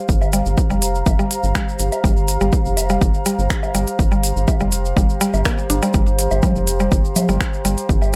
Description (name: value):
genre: minimal techno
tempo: 123 BPM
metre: 4/4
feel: straight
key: G minor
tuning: A4 = 445 Hz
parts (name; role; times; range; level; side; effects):
- warbly tape-like pad; texture; 0.0-8.2 s; G4 to Bb5; -27 LUFS; equal; chorus, built-in reverb, sidechain pumping
- rubbery square bass; bass; 0.1-8.2 s; F1 to G1; -23 LUFS; equal; sidechain pumping
- electronic kick drum; drums; 0.1-8.0 s; none; -21 LUFS; equal; overdrive
- tube shaker; percussion; 0.1-8.2 s; none; -31 LUFS; equal; none
- woodblock and congas; percussion; 0.2-8.1 s; none; -26 LUFS; equal; digital delay
- mallet-like synth pluck; riff; 0.3-7.7 s; G3 to D4; -26 LUFS; equal; chorus, sidechain pumping, digital delay
- minimal click drum kit; drums; 0.3-7.9 s; finger snaps, hi-hat; -26 LUFS; equal; overdrive
room: light reverb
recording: none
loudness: -18 LUFS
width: mono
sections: 0.0-8.2 A section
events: none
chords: 0.0 Gm7